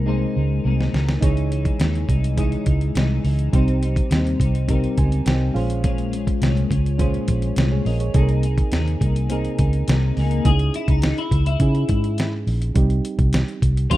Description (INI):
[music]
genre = indie pop, bedroom pop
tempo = 104 BPM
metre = 4/4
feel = straight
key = unclear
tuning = A4 = 440 Hz
[part]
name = reed electric piano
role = accompaniment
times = 0.0-14.0 s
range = G3 to Ab5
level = -29 LUFS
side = right 6 dB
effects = none
[part]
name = twelve-string electric guitar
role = accompaniment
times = 0.0-14.0 s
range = Bb2 to Ab4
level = -26 LUFS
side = left 5 dB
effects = analog chorus, vibrato effect
[part]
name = vintage muted fingered electric bass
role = bass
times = 0.0-14.0 s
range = Bb1 to Db3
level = -20 LUFS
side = equal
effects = none
[part]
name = dusty soul sampler-style drum kit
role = drums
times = 0.8-14.0 s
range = hi-hat, kick drum, snare drum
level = -22 LUFS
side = equal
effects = none
[sound]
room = digital ambience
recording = rough home demo mix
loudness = -18 LUFS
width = side -16 dB against mid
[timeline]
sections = 0.0-10.5 A section; 10.5-14.0 B section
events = drum fill 0.7-1.2; reed electric piano fill 4.7-5.8; clean electric guitar solo 10.5-14.0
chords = 0.0 Abadd9/C; 1.2 Dbmadd9; 3.5 Cm; 5.6 Bbm7; 8.1 Abadd9/C; 10.5 Dbmadd9; 12.8 Cm